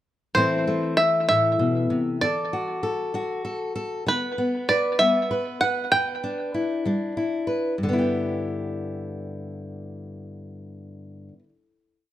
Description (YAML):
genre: indie folk with a building arrangement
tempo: 65 BPM (dotted quarters)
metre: 6/8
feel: straight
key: G major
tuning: A4 = 439 Hz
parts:
  - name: bluegrass banjo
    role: melody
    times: 0.3-7.1 s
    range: B4 to G5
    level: -22 LUFS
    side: right 1 dB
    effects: tape echo
  - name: fingerpicked steel-string acoustic guitar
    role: accompaniment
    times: 0.3-11.5 s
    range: E2 to B4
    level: -25 LUFS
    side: left 1 dB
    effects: none
room: moderate large studio reverb, RT60 0.9 s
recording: none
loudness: -22 LUFS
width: side -13 dB against mid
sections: 0.3-7.8 verse; 7.8-11.5 final chord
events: none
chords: 0.3 Am; 2.2 D; 4.1 G/D; 5.9 Em7; 7.8 G6